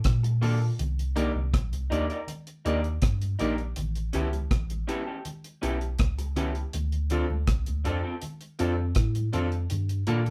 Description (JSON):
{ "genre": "lovers rock reggae", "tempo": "81 BPM", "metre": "4/4", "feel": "straight", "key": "C dorian", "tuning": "A4 = 439 Hz", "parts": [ { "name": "deep reggae drum kit", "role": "drums", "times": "0.0-10.3 s", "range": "hi-hat, kick drum, rim click", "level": "-30 LUFS", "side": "equal", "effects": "none" }, { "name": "mellow tine electric piano", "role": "bass", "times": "0.1-10.3 s", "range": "A1 to Bb2", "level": "-30 LUFS", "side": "equal", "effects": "phaser" }, { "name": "congas", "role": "percussion", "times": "0.1-10.3 s", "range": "none", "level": "-43 LUFS", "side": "equal", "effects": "tape echo" }, { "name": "electric guitar through a small old amp", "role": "stabs", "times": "0.2-10.2 s", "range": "Bb3 to D5", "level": "-36 LUFS", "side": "equal", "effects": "none" }, { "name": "bright baby grand piano", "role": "accompaniment", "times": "0.4-10.2 s", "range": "Bb3 to A4", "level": "-33 LUFS", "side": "equal", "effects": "none" } ], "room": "moderate studio ambience, RT60 0.5 s", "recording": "band playing live in one room", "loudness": "-28 LUFS", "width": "mono", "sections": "0.0-10.3 A section", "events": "none", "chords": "0.0 Gm9 (rootless); 0.8 Cm9; 3.8 A7; 6.7 Dm7; 9.7 Gm9" }